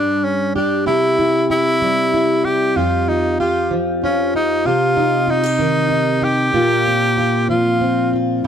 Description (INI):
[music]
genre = pop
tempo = 63 BPM (dotted quarters)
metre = 6/8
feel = straight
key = unclear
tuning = A4 = 440 Hz
[part]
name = breathy tenor saxophone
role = melody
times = 0.0-8.5 s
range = Db4 to G4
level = -18 LUFS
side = equal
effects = none
[part]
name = fingerpicked plugged-in steel-string acoustic guitar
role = accompaniment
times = 0.0-8.5 s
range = F2 to G4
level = -17 LUFS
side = equal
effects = double-tracked left and right
[sound]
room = light reverb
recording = dry, close 1970s-style studio recording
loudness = -14 LUFS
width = side -8 dB against mid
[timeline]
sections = 0.0-8.5 A section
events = none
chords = 0.0 G5; 0.9 C; 2.8 Fsus2; 4.7 Cm; 6.5 Bbsus2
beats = | 0.87 1.82 | 2.76 3.71 | 4.65 5.60 | 6.55 7.49 | 8.44